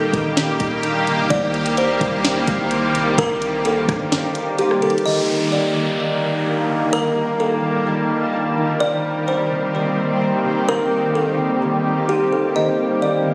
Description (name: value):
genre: hip hop, atmospheric cloud-rap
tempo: 128 BPM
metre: 4/4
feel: half-time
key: Eb lydian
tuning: A4 = 440 Hz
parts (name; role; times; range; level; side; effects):
- kalimba; melody; 0.0-13.3 s; G4 to Eb5; -24 LUFS; equal; digital delay
- shimmering ambient pad; sustained chords; 0.0-13.3 s; Eb3 to A5; -23 LUFS; equal; chorus, built-in reverb, sidechain pumping
- concert harp; arpeggios; 0.0-13.3 s; C3 to D4; -28 LUFS; equal; digital delay
- long sustained 808-style bass; bass; 0.0-4.1 s; Eb1 to G2; -32 LUFS; equal; none
- wind-like tuned noise texture; texture; 0.1-13.3 s; G3 to D6; -37 LUFS; equal; none
- smooth R&B drum kit; drums; 0.1-5.1 s; hi-hat, kick drum, rim click, snare drum; -24 LUFS; equal; none
- downlifter; sound effects; 5.1-8.8 s; none; -30 LUFS; equal; none
room: moderate lush hall reverb, RT60 2.0 s, digital ambience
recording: recorded on a phone in the room, studio reverb, compression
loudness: -19 LUFS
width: mono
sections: 0.0-5.1 A section; 5.1-13.3 B section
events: kick muted 4.1-5.1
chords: 0.0 Ebmaj7; 1.3 Cm7; 5.1 Ebmaj7; 8.8 Cm7; 12.6 Ebmaj7